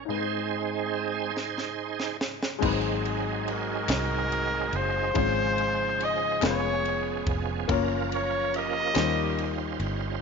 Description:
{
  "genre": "slow gospel",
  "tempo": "47 BPM (dotted quarters)",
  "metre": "6/8",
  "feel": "straight",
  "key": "unclear",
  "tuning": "A4 = 443 Hz",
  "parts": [
    { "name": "dark baby grand piano", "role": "accompaniment", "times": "0.0-10.2 s", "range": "Ab2 to Db5", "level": "-32 LUFS", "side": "left 12 dB", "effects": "none" },
    { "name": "bright tonewheel organ", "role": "sustained chords", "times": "0.0-10.2 s", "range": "Db3 to C5", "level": "-31 LUFS", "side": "right 12 dB", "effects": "fast rotary speaker, overdrive, chorus vibrato" },
    { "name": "fingered electric bass", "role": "bass", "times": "0.0-10.2 s", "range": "F1 to Eb2", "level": "-32 LUFS", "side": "equal", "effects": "none" },
    { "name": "tight funk drum kit", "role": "drums", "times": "1.4-10.0 s", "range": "crash cymbal, kick drum, ride cymbal, snare drum", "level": "-34 LUFS", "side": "right 1 dB", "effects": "none" },
    { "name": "warm horn section", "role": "melody", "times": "3.1-9.8 s", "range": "Eb4 to Eb5", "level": "-28 LUFS", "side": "left 1 dB", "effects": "none" },
    { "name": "group handclap", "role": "percussion", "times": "3.9-9.3 s", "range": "none", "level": "-35 LUFS", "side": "left 15 dB", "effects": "none" }
  ],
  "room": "light reverb",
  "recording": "1960s-style stereo with parts hard left and right, nothing above 7.5 kHz",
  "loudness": "-25 LUFS",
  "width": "side -5 dB against mid",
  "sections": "0.0-2.6 A section; 2.6-10.2 B section",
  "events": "tonewheel organ solo 0.0-2.6; break 0.1-2.6; drum fill 1.3-2.6",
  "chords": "0.1 Ab; 2.6 Ab7; 5.2 Dbmaj7/Ab; 6.4 Db7/F; 7.7 Gbmaj7; 9.0 Eb13"
}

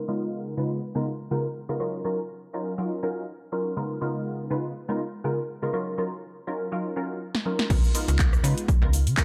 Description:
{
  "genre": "filtered disco house",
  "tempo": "122 BPM",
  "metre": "4/4",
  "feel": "swing 55% on 16ths",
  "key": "unclear",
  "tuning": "A4 = 440 Hz",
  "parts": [
    { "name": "funky polysynth comp", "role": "accompaniment", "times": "0.0-9.2 s", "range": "Db3 to Cb5", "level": "-31 LUFS", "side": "equal", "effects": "chorus, phaser, sidechain pumping, low-pass filter" },
    { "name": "house drum kit", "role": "drums", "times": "7.3-9.2 s", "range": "crash cymbal, handclaps, hi-hat, rim click, shaker, snare drum", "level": "-31 LUFS", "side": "equal", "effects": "sidechain pumping on hats, sidechain pumping on cymbals, sidechain pumping on perc" },
    { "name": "slap-like FM bass", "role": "bass", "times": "7.7-9.2 s", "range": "Db2 to Db3", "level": "-26 LUFS", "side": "equal", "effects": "sidechain pumping, low-pass filter" },
    { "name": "electronic kick drum", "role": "drums", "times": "7.7-9.2 s", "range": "none", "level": "-25 LUFS", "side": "equal", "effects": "none" }
  ],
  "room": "light reverb",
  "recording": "dark, warm production",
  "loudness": "-28 LUFS",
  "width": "mono",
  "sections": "0.0-7.7 A section; 7.7-9.2 B section",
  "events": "filter sweep on analog polysynth 0.0-7.7; drum fill 7.3-7.7; drop 7.7-9.2",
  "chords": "0.0 Db13; 1.8 Ebm9; 3.8 Db13; 5.7 Ebm9; 7.7 Db13"
}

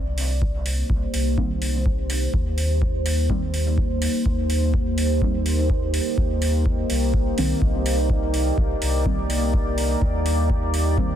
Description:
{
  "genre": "dub techno",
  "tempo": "125 BPM",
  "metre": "4/4",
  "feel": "straight",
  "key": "C minor",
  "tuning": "A4 = 440 Hz",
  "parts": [
    { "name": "deep dark ambient pad", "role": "sustained chords", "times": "0.0-11.2 s", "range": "Bb3 to D5", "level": "-25 LUFS", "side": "equal", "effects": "chorus, built-in reverb, sidechain pumping" },
    { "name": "soft dub sub bass", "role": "bass", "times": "0.0-11.2 s", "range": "C2 to Eb2", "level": "-24 LUFS", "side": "equal", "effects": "sidechain pumping" },
    { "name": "electronic hi-hat", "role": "drums", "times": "0.2-10.8 s", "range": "none", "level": "-31 LUFS", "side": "right 2 dB", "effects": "overdrive" },
    { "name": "electronic kick drum", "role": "drums", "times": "0.4-11.1 s", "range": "none", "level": "-24 LUFS", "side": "equal", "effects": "none" },
    { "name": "deep mellow chord stab", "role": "stabs", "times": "1.4-11.1 s", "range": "Eb3 to C4", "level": "-30 LUFS", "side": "right 1 dB", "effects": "chorus, phaser, sidechain pumping, dub echo" }
  ],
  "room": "light reverb",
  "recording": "dense, heavily limited modern master, faint mains hum",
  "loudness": "-20 LUFS",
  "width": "side -10 dB against mid",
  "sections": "0.0-11.2 A section",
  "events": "none",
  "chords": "0.0 Cm7"
}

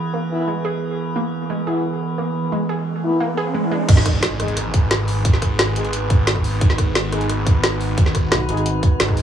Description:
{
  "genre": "dark technical drum and bass",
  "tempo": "176 BPM",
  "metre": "4/4",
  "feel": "straight",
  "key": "G# minor",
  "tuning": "A4 = 440 Hz",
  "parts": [
    { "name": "metallic inharmonic drone", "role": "sustained chords", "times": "0.0-9.2 s", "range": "D#3 to B4", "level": "-25 LUFS", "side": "right 2 dB", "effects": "chorus, built-in reverb, sidechain pumping" },
    { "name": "wide unison pluck", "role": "arpeggios", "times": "0.1-3.9 s", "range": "G#3 to G#4", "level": "-26 LUFS", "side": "right 2 dB", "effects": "sidechain pumping, dub echo" },
    { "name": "mellow brass ensemble", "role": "stabs", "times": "0.3-9.2 s", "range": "E3 to G#4", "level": "-25 LUFS", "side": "left 2 dB", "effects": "dub echo" },
    { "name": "riser and impact", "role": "sound effects", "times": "2.4-5.2 s", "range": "none", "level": "-28 LUFS", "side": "right 1 dB", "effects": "none" },
    { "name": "snarling distorted saw bass", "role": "bass", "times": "3.9-9.2 s", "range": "G#1", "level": "-22 LUFS", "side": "equal", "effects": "distortion, overdrive" },
    { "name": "drum and bass drum kit", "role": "drums", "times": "3.9-9.2 s", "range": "crash cymbal, hi-hat, rim click, snare drum", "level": "-21 LUFS", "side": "equal", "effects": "none" },
    { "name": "electronic kick drum", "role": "drums", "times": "3.9-9.2 s", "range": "none", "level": "-16 LUFS", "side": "equal", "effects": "none" },
    { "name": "metallic wobble bass", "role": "bass", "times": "8.3-8.8 s", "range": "G#1 to B1", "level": "-21 LUFS", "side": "equal", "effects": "chorus" }
  ],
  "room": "light reverb, digital ambience",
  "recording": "none",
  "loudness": "-17 LUFS",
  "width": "side -9 dB against mid",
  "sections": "0.0-3.9 A section; 3.9-9.2 B section",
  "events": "riser 2.4-3.9; drop 3.9-9.2; impact 3.9-5.2",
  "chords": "0.0 E; 3.9 G#m"
}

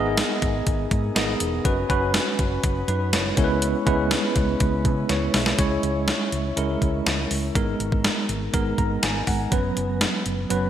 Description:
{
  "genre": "1980s-style pop",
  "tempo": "122 BPM",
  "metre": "4/4",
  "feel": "straight",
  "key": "C# dorian",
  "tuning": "A4 = 440 Hz",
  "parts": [
    { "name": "bell-like tine electric piano", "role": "accompaniment", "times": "0.0-10.7 s", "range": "F#3 to A#5", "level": "-24 LUFS", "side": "right 1 dB", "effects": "fast stereo tremolo, shimmer reverb" },
    { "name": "hollow-body short-scale fingered electric bass", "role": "bass", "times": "0.0-10.7 s", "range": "E1 to C#3", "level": "-28 LUFS", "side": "equal", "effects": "none" },
    { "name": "clean 12-bit digital drum machine", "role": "drums", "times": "0.2-10.6 s", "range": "hi-hat, kick drum, snare drum, tambourine", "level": "-24 LUFS", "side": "equal", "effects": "overdrive, gated reverb" }
  ],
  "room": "moderate lush hall reverb, RT60 1.9 s, digital ambience",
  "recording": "bright 1980s-style digital production",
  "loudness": "-20 LUFS",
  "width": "side -10 dB against mid",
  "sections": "0.0-5.6 A section; 5.6-10.7 B section",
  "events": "drum fill 5.1-5.6; tine electric piano fill 8.5-9.5",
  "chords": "0.0 G#madd9; 1.7 F#sus4; 3.4 C#m7; 5.6 C#m; 7.6 G#madd9; 9.5 F#sus4"
}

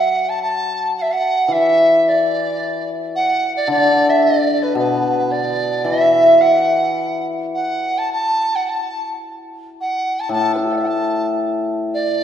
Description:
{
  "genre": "chinese traditional, Chinese chamber ensemble",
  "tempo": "110 BPM",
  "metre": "4/4",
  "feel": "rubato",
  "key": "D gong mode",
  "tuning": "A4 = 440 Hz",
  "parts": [
    { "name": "mellow large dizi", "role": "melody", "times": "0.0-12.2 s", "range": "D4 to A5", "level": "-16 LUFS", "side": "right 1 dB", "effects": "none" },
    { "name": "hammered dulcimer", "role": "accompaniment", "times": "0.0-11.9 s", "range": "A2 to F#3", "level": "-21 LUFS", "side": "left 3 dB", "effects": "none" }
  ],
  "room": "wet concert hall reverb, RT60 2.3 s",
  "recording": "heard from further back in the room",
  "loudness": "-15 LUFS",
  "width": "side -9 dB against mid",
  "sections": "0.0-12.2 A section",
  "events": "none",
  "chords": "none"
}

